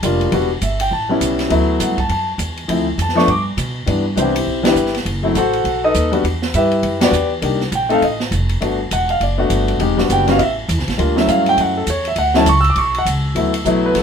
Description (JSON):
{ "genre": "jazz piano trio", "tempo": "202 BPM", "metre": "4/4", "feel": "swing 61% on 8ths", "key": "D major", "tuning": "A4 = 439 Hz", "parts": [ { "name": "warm concert grand piano", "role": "melody", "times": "0.0-14.0 s", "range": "E3 to E6", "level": "-16 LUFS", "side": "left 1 dB", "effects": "none" }, { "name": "upright bass", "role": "bass", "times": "0.0-14.0 s", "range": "E1 to B2", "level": "-20 LUFS", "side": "right 1 dB", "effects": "none" }, { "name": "open jazz drum kit", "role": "drums", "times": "0.0-14.0 s", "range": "hi-hat, kick drum, ride cymbal, snare drum", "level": "-24 LUFS", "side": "right 2 dB", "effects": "none" } ], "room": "light reverb", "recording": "minimal, uncompressed stereo recording", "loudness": "-14 LUFS", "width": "side -7 dB against mid", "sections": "0.0-3.9 A section; 3.9-13.4 B section", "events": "band accent 4.6, 7.0", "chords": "0.3 Em9; 0.9 A9; 1.5 D69; 2.7 Dm7; 3.3 G; 3.9 Cmaj7; 5.1 F#dim; 5.7 B7; 6.2 Em7; 7.4 Cm7; 8.0 F; 8.6 Gmaj7; 9.8 Em7; 10.4 A; 11.0 Dmaj7; 13.4 D69" }